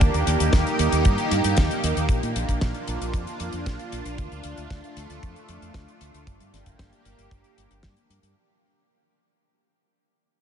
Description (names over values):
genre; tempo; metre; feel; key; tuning
italo disco; 115 BPM; 4/4; straight; G minor; A4 = 438 Hz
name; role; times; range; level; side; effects
lush unison pad; sustained chords; 0.0-8.3 s; A3 to G4; -27 LUFS; right 2 dB; chorus, phaser
fingered electric bass; bass; 0.0-8.3 s; G1 to Bb2; -27 LUFS; equal; none
damped 70s drum kit; drums; 0.0-8.3 s; hi-hat, snare drum; -31 LUFS; left 2 dB; studio ambience
kick drum; drums; 0.0-7.9 s; none; -21 LUFS; equal; studio ambience
room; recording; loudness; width
moderate huge ambient reverb, RT60 8.1 s; dreamy mix soaked in reverb, nothing above 10.9 kHz; -21 LUFS; side -8 dB against mid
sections
0.0-8.4 A section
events
fade-out 0.0-8.4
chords
0.0 Eb; 2.1 Bb; 4.2 Dm; 6.3 Gm